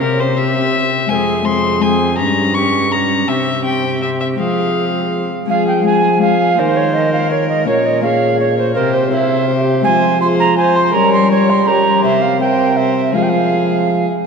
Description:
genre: classical, renaissance-style consort dance.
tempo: 165 BPM.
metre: 3/4.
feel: straight.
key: F minor.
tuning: A4 = 440 Hz.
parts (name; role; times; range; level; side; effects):
warm violin; melody; 0.0-14.1 s; Ab4 to Db6; -20 LUFS; left 3 dB; none.
mellow tenor recorder; second line; 0.0-14.1 s; G4 to C6; -17 LUFS; right 5 dB; none.
Celtic harp; accompaniment; 0.0-14.3 s; F2 to C5; -20 LUFS; left 6 dB; none.
warm viola; accompaniment; 0.0-14.1 s; C4 to C5; -22 LUFS; left 2 dB; none.
mellow trombone; bass; 0.0-14.1 s; F2 to G3; -19 LUFS; right 1 dB; none.
room: wet cathedral reverb, RT60 4.4 s.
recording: dark, warm production.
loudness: -12 LUFS.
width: side -5 dB against mid.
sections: 0.0-5.5 A section; 5.5-14.3 A section.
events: none.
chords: 0.0 C; 1.1 Fm; 2.2 Gdim; 3.3 C; 4.4 Fm; 6.6 Eb; 7.7 Bbm; 8.8 C; 9.9 Fm; 11.0 Gdim; 12.0 C; 13.2 Fm.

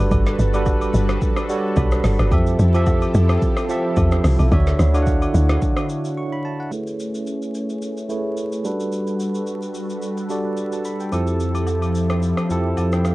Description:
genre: amapiano.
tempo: 109 BPM.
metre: 4/4.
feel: swing 55% on 16ths.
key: unclear.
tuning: A4 = 440 Hz.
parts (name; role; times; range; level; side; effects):
bell-like tine electric piano; accompaniment; 0.0-13.1 s; D3 to C#6; -23 LUFS; right 2 dB; medium stereo tremolo, low-pass filter.
lush unison pad; sustained chords; 0.0-13.1 s; D3 to C#5; -28 LUFS; left 2 dB; chorus, phaser, sidechain pumping, low-pass filter.
woody log drum bass; bass; 0.0-5.6 s; G1 to F2; -17 LUFS; equal; none.
afro-pop drum kit; drums; 0.1-13.1 s; hi-hat, kick drum, rim click, shaker, snare drum; -24 LUFS; equal; overdrive, vintage 12-bit sampler grit.
agogo bells and woodblock; percussion; 0.1-5.9, 11.1-12.9 s; none; -34 LUFS; left 3 dB; none.
sub bass with octave; bass; 11.1-13.1 s; F2; -22 LUFS; equal; none.
room: little or no reverb.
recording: dark, warm production, vinyl crackle.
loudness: -18 LUFS.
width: side -19 dB against mid.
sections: 0.0-6.7 A section; 6.7-13.1 B section.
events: drop 0.0-6.7; tine electric piano fill 1.5-2.3; break 6.2-6.7; filter sweep 6.7-13.1.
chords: 0.0 Gmaj9; 2.3 Fmaj9; 4.5 Dmaj9; 6.7 Amaj9; 8.6 Gmaj9; 11.1 Fmaj9.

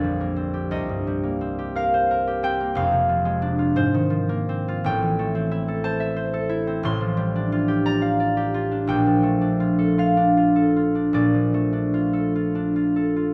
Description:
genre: classical, solo harp piece.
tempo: 48-62 BPM (dotted quarters).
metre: 6/8.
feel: rubato.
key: unclear.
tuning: A4 = 440 Hz.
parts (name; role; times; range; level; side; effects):
concert harp; solo; 0.0-13.3 s; F1 to C6; -22 LUFS; equal; none.
room: wet recital hall reverb, RT60 1.4 s.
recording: none.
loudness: -22 LUFS.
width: mono.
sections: 0.0-13.3 A section.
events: none.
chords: 0.0 Bb69; 0.7 Cm7; 2.8 Fm6; 3.8 G#69; 4.9 Am7; 6.8 Gm9/A; 8.9 Bbmaj7.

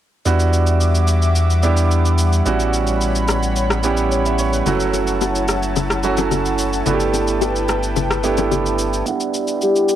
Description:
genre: amapiano.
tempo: 109 BPM.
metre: 4/4.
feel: straight.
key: E dorian.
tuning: A4 = 442 Hz.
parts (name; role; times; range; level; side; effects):
clear concert grand piano; accompaniment; 0.3-10.0 s; F#3 to F#5; -20 LUFS; right 6 dB; low-pass filter, cassette tape.
airy breathy pad; sustained chords; 0.3-10.0 s; G3 to D6; -24 LUFS; left 2 dB; chorus, low-pass filter, cassette tape.
punchy sub bass; bass; 0.3-9.0 s; F#1 to E2; -19 LUFS; left 1 dB; none.
electronic shaker and rim click; drums; 0.3-10.0 s; none; -24 LUFS; left 1 dB; cassette tape.
congas and bongos; percussion; 4.7-8.6 s; none; -23 LUFS; left 10 dB; none.
soft octave-layered synth lead; melody; 9.6-10.0 s; G4; -14 LUFS; left 2 dB; chorus, phaser, low-pass filter.
room: light reverb.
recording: home recording on cassette.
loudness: -15 LUFS.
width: side -11 dB against mid.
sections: 0.3-9.1 A section.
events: none.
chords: 0.3 Em9; 2.5 A13; 4.7 F#m7; 6.9 G69; 9.1 Em9.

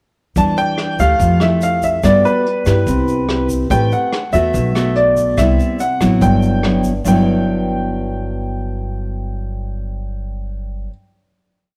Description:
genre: bossa nova.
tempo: 143 BPM.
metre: 4/4.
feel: straight.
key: G major.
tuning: A4 = 438 Hz.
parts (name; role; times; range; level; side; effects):
clear grand piano; melody; 0.4-10.9 s; B4 to A5; -20 LUFS; equal; none.
nylon-string guitar; accompaniment; 0.4-10.9 s; G2 to B4; -20 LUFS; equal; none.
upright bass; bass; 0.4-10.9 s; G1 to G2; -22 LUFS; equal; none.
vintage brush drum kit; drums; 0.4-6.9 s; hi-hat, kick drum, rim click; -28 LUFS; equal; none.
egg shaker; percussion; 0.4-7.2 s; none; -39 LUFS; equal; none.
room: light reverb.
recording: none.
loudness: -16 LUFS.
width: mono.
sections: 0.4-7.1 A section; 7.1-10.4 final chord.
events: none.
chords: 0.4 Em7; 1.2 Fmaj9; 2.0 Gmaj9; 2.9 Cmaj7; 3.7 Am9; 4.5 Bm7; 5.4 Cmaj7; 6.2 G6.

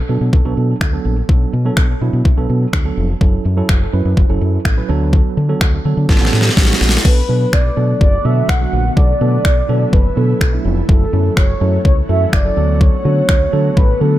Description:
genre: dance-pop.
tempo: 125 BPM.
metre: 4/4.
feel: straight.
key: B minor.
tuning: A4 = 439 Hz.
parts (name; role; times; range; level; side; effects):
tine electric piano; accompaniment; 0.1-14.2 s; F#3 to B4; -21 LUFS; right 5 dB; auto-pan, sidechain pumping, dub echo.
fingered electric bass; bass; 0.1-14.2 s; E#1 to D3; -16 LUFS; equal; sidechain pumping.
pop drum kit; drums; 0.3-13.9 s; crash cymbal, finger snaps, kick drum, snare drum; -13 LUFS; equal; overdrive.
mellow horn-like synth lead; melody; 7.1-14.2 s; A4 to F#5; -20 LUFS; equal; chorus, dub echo.
ethereal airy pad; sustained chords; 7.7-14.2 s; D3 to F#4; -26 LUFS; left 2 dB; ensemble chorus, built-in reverb, sidechain pumping.
room: digital ambience.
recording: echo-heavy mix.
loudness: -12 LUFS.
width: side -14 dB against mid.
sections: 0.0-7.1 A section; 7.1-14.2 B section.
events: drum fill 6.1-7.1.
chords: 0.0 Bm7; 3.2 F#m7; 4.9 D6; 6.1 A9; 7.1 Bm7; 10.9 F#m7; 12.6 D6.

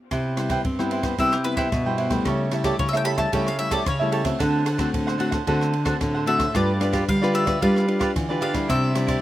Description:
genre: samba and choro.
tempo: 112 BPM.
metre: 4/4.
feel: straight.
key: C major.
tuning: A4 = 440 Hz.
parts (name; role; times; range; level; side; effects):
cavaquinho; accompaniment; 0.1-9.2 s; D4 to G5; -27 LUFS; right 3 dB; none.
nylon-string guitar; accompaniment; 0.1-9.2 s; G2 to B4; -26 LUFS; left 3 dB; slapback echo.
nylon-string guitar; bass; 0.1-9.2 s; G2 to C4; -25 LUFS; right 1 dB; none.
open jazz drum kit; drums; 0.1-9.2 s; kick drum, ride cymbal, rim click; -30 LUFS; equal; none.
bowl-back mandolin; melody; 1.2-9.2 s; G4 to B5; -27 LUFS; left 3 dB; slapback echo.
room: little or no reverb.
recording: recorded outdoors, with no room sound.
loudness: -20 LUFS.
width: side -14 dB against mid.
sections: 0.1-9.2 A section.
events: mandolin solo 0.1-9.2.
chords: 0.1 Cmaj7; 2.3 A7/C#; 4.4 D7; 6.6 G7; 8.7 Cadd9.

